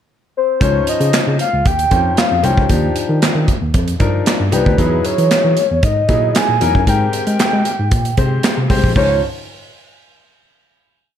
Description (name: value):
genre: early-eighties boogie funk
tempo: 115 BPM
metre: 4/4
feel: straight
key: Db lydian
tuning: A4 = 440 Hz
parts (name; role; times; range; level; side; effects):
- soft octave-layered synth lead; melody; 0.4-9.2 s; Cb5 to G#5; -17 LUFS; equal; chorus, phaser, slapback echo
- clear grand piano; accompaniment; 0.6-9.2 s; F3 to C5; -21 LUFS; left 5 dB; none
- tine electric piano; bass; 0.6-9.2 s; Bb1 to Ab3; -18 LUFS; equal; none
- modern studio drum kit; drums; 0.6-9.1 s; crash cymbal, handclaps, hi-hat, kick drum, snare drum; -17 LUFS; right 1 dB; gated reverb
room: light reverb, small room ambience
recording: none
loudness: -12 LUFS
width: side -9 dB against mid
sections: 0.0-0.6 pickup bar; 0.6-9.0 verse; 9.0-11.0 final chord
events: none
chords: 0.0 N.C.; 0.6 Dbmaj9; 2.7 Ebmaj9; 4.8 Emaj9; 6.9 Abmaj9; 9.0 Dbmaj9